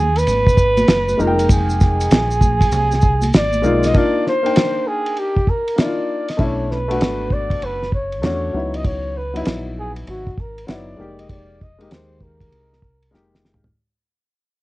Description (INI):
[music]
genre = hip hop, jazz-hop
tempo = 98 BPM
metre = 4/4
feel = swing 65% on 16ths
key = unclear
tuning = A4 = 440 Hz
[part]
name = breathy flugelhorn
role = melody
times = 0.0-13.4 s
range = Gb4 to Eb5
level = -20 LUFS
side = right 1 dB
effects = cassette tape
[part]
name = deep dub fingered electric bass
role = bass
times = 0.0-13.7 s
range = F1 to E2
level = -23 LUFS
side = equal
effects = transformer saturation
[part]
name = cloth-damped thuddy drum kit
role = drums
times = 0.2-13.8 s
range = hi-hat, kick drum, ride cymbal, snare drum, toms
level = -17 LUFS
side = equal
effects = none
[part]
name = maracas and congas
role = percussion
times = 0.2-3.9 s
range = none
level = -26 LUFS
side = right 1 dB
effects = none
[part]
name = dark grand piano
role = accompaniment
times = 1.2-13.6 s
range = Gb3 to G5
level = -23 LUFS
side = left 2 dB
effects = none
[sound]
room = light reverb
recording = home recording on cassette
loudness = -15 LUFS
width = side -19 dB against mid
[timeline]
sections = 0.0-3.9 A section; 3.9-13.7 B section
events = break 3.9-6.4; fade-out 3.9-13.7; drum fill 13.1-13.7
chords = 0.0 Db9sus4 (rootless); 1.2 Fm11; 3.9 Cm11; 6.4 Bm11; 8.5 Dbm11; 11.0 Fm11